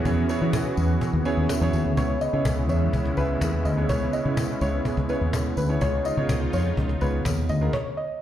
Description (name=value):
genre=dance-pop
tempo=125 BPM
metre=4/4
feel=straight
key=unclear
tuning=A4 = 442 Hz
part: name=filtered supersaw swell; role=sustained chords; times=0.0-7.7 s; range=C#3 to G#4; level=-30 LUFS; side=equal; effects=none
part: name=warm baby grand piano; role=accompaniment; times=0.1-7.7 s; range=B3 to G#5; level=-29 LUFS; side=right 3 dB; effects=none
part: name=fingered electric bass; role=bass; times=0.1-7.7 s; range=C#2 to E3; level=-24 LUFS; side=left 1 dB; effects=none
part: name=cajon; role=drums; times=0.1-7.8 s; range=none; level=-30 LUFS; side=left 1 dB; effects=none
part: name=tambourine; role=percussion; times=0.1-7.6 s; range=none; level=-44 LUFS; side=left 6 dB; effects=none
part: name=soft round pluck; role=melody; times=2.0-8.1 s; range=B4 to D#5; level=-30 LUFS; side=left 1 dB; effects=chorus
room=moderate plate reverb, RT60 1.7 s, small room ambience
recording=played on a big sound system in a bare room, large studio reverb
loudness=-22 LUFS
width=side -11 dB against mid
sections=0.0-2.0 A section; 2.0-8.2 B section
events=grand piano fill 1.0-2.0; stop 7.7-8.2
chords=0.0 E6; 2.0 C#m7; 5.8 C#7